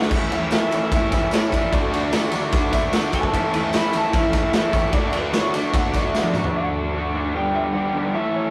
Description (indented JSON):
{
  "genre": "garage rock duo or trio",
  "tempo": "149 BPM",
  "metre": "4/4",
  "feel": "straight",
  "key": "unclear",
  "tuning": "A4 = 439 Hz",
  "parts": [
    { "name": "electric slide guitar", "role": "melody", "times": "0.0-8.5 s", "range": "B4 to B5", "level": "-30 LUFS", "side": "equal", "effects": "none" },
    { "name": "raw garage guitar", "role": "riff", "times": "0.0-8.5 s", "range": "G2 to A4", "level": "-25 LUFS", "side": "equal", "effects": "overdrive" },
    { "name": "raw garage drum kit", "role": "drums", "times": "0.0-6.5 s", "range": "crash cymbal, kick drum, ride cymbal, snare drum, toms", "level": "-25 LUFS", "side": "equal", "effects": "none" },
    { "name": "overdriven combo organ", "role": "sustained chords", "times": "0.1-8.5 s", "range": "E4 to D5", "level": "-33 LUFS", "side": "equal", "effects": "none" },
    { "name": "tambourine", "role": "percussion", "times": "0.1-6.4 s", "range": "none", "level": "-42 LUFS", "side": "equal", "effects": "none" }
  ],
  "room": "moderate studio reverb, RT60 0.6 s",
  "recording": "rough rehearsal-room recording, warm saturation",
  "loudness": "-21 LUFS",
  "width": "mono",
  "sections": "0.0-6.5 A section; 6.5-8.5 B section",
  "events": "drum fill 6.1-6.5",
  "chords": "0.1 A; 1.7 D; 3.3 A; 4.9 D; 7.3 G"
}